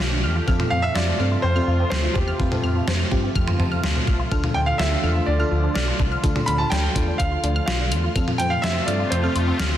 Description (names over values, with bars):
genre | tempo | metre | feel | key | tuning
synth-pop | 125 BPM | 4/4 | straight | unclear | A4 = 439 Hz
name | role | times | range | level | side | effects
sweeping resonant pad | sustained chords | 0.0-9.8 s | C3 to G4 | -30 LUFS | left 1 dB | chorus
resonant blip pluck | arpeggios | 0.0-9.8 s | C4 to F6 | -30 LUFS | left 1 dB | phaser, tape echo
smooth gliding synth bass | bass | 0.0-9.8 s | B1 to G2 | -23 LUFS | equal | none
gated 80s digital drum machine | drums | 0.0-9.7 s | hi-hat, kick drum, snare drum, toms | -24 LUFS | equal | gated reverb, gated reverb snare
FM electric piano with soft pad layer | accompaniment | 0.5-9.7 s | C4 to A5 | -30 LUFS | equal | chorus
clear grand piano | melody | 0.7-9.8 s | G4 to B5 | -26 LUFS | right 1 dB | tape echo
room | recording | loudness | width
moderate lush hall reverb, RT60 2.2 s | dense, heavily limited modern master | -19 LUFS | side -11 dB against mid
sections
0.0-9.8 A section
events
FM electric piano fill 3.4-4.3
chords
0.5 F; 4.3 Dm; 8.2 F